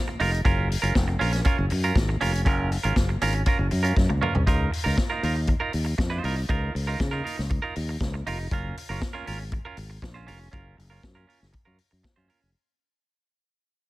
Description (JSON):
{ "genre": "disco", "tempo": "119 BPM", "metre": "4/4", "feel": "straight", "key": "unclear", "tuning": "A4 = 441 Hz", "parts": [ { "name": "semi-hollow electric guitar", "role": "accompaniment", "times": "0.1-12.5 s", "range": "Db4 to C5", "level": "-29 LUFS", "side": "right 4 dB", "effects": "none" }, { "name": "fingered electric bass", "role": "bass", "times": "0.2-12.5 s", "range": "F1 to Db3", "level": "-26 LUFS", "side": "equal", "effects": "none" }, { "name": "vintage drum kit", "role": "drums", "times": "0.2-12.4 s", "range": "hi-hat, kick drum, snare drum, toms", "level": "-27 LUFS", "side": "equal", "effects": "none" } ], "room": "small room ambience", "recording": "none", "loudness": "-22 LUFS", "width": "side -18 dB against mid", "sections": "0.0-4.5 A section; 4.5-12.6 B section", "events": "drum fill 4.0-4.5; fade-out 4.5-12.6", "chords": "0.4 Gbmaj7; 4.5 Db69; 8.5 Gbmaj7" }